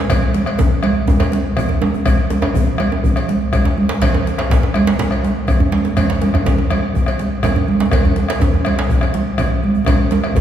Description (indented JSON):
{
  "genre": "west african traditional, West African drum ensemble",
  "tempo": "123 BPM",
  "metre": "4/4",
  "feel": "straight",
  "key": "none",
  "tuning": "none",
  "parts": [
    { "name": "bombo", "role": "percussion", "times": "0.1-10.4 s", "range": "none", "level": "-19 LUFS", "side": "left 1 dB", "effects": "none" },
    { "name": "congas", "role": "percussion", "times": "0.1-10.4 s", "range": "none", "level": "-19 LUFS", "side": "right 3 dB", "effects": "none" },
    { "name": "cowbell", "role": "percussion", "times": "0.1-10.4 s", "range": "none", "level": "-28 LUFS", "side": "left 2 dB", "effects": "none" },
    { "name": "djembe", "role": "percussion", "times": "0.1-10.4 s", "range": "none", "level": "-22 LUFS", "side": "left 2 dB", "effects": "none" },
    { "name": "djembe", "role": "percussion", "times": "0.1-10.4 s", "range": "none", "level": "-20 LUFS", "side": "right 2 dB", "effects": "none" }
  ],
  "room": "wet concert hall reverb, RT60 2.2 s",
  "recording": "heard from further back in the room, small room ambience",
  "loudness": "-14 LUFS",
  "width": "side -10 dB against mid",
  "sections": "0.0-10.4 A section",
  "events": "drum fill 9.9-10.4",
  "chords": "none",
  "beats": "| 0.10 0.59 1.08 1.57 | 2.06 2.55 3.04 3.53 | 4.02 4.51 5.00 5.49 | 5.97 6.46 6.95 7.44 | 7.93 8.42 8.90 9.39 | 9.88 10.37"
}